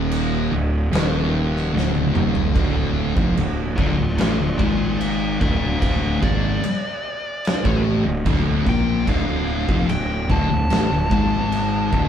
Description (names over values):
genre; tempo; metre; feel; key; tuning
stoner and doom metal; 74 BPM; 4/4; straight; D phrygian; A4 = 439 Hz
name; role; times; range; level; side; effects
thick fuzz guitar; riff; 0.0-12.1 s; D2 to Bb3; -24 LUFS; left 7 dB; distortion
thick fuzz guitar; riff; 0.0-12.1 s; D2 to Bb3; -26 LUFS; right 6 dB; distortion
fuzz picked electric bass; bass; 0.0-12.1 s; D1 to Bb1; -24 LUFS; right 1 dB; overdrive
big rock drum kit; drums; 0.1-12.1 s; crash cymbal, kick drum, snare drum, toms; -23 LUFS; right 1 dB; none
fuzz lead guitar; melody; 3.8-12.1 s; F4 to A5; -27 LUFS; equal; distortion
room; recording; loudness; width
moderate small room reverb, RT60 0.5 s; band playing live in one room; -18 LUFS; side -9 dB against mid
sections
0.0-2.6 A section; 2.6-12.1 B section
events
drum fill 1.7-2.6; lead electric guitar solo 2.6-12.1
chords
0.0 D5; 2.6 Dm